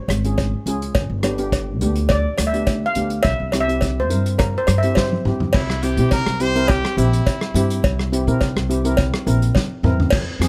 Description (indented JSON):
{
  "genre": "calypso",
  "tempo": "105 BPM",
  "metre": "4/4",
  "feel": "straight",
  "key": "unclear",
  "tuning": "A4 = 436 Hz",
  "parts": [
    { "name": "steel pan", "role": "melody", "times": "0.0-5.2 s", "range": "Bb4 to F5", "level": "-26 LUFS", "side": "equal", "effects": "none" },
    { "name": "upright bass", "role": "bass", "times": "0.1-10.5 s", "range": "G1 to C3", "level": "-23 LUFS", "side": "equal", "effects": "none" },
    { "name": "unplugged drum kit", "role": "drums", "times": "0.1-10.5 s", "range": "crash cymbal, hi-hat, kick drum, rim click, snare drum, toms", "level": "-24 LUFS", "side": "equal", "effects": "none" },
    { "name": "cowbell", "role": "percussion", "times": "0.1-10.3 s", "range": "none", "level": "-26 LUFS", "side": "equal", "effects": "none" },
    { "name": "steel pan", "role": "accompaniment", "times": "0.2-10.5 s", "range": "B3 to Bb4", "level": "-27 LUFS", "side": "equal", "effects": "none" },
    { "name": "clear trumpet", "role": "second line", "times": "5.5-8.1 s", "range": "E4 to C5", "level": "-27 LUFS", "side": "equal", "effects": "none" }
  ],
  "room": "little or no reverb",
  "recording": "close, detailed microphones",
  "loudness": "-19 LUFS",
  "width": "mono",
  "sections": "0.0-5.5 A section; 5.5-10.1 B section",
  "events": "steel pan solo 0.0-5.5; drum fill 5.0-5.5, 9.5-10.1",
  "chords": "0.0 Db; 1.0 G; 3.2 C"
}